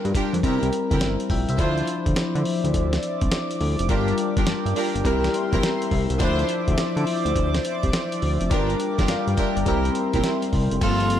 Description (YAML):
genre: R&B, new jack swing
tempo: 104 BPM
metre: 4/4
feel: swing 66% on 16ths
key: D minor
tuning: A4 = 441 Hz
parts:
  - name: bell-like tine electric piano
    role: accompaniment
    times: 0.0-11.2 s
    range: F3 to G5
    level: -25 LUFS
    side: left 4 dB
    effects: phaser
  - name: fat analog bass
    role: bass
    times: 0.0-11.2 s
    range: F1 to D3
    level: -24 LUFS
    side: equal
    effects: none
  - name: warm studio string section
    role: stabs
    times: 0.1-11.0 s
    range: Bb3 to C5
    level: -29 LUFS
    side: right 4 dB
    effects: ping-pong delay
  - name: dusty soul sampler-style drum kit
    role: drums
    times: 0.1-11.2 s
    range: crash cymbal, hi-hat, kick drum, snare drum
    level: -26 LUFS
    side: equal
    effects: none
  - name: chorused pulse-width pad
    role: sustained chords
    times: 1.6-11.2 s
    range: Bb3 to D6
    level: -29 LUFS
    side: right 1 dB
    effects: none
  - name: edgy tenor saxophone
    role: melody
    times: 10.8-11.2 s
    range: F4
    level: -23 LUFS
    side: right 2 dB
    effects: none
room: digital ambience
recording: lossy compression artefacts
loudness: -20 LUFS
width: side -10 dB against mid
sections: 0.0-10.8 A section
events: none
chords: 0.4 C7; 1.6 Dm9; 3.9 Gm7; 5.0 C7; 6.2 Dm9; 8.5 Gm7; 9.7 C7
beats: 0.43 1.01 | 1.59 2.16 2.74 3.32 | 3.89 4.47 5.05 5.62 | 6.20 6.78 7.36 7.93 | 8.51 9.09 9.66 10.24 | 10.82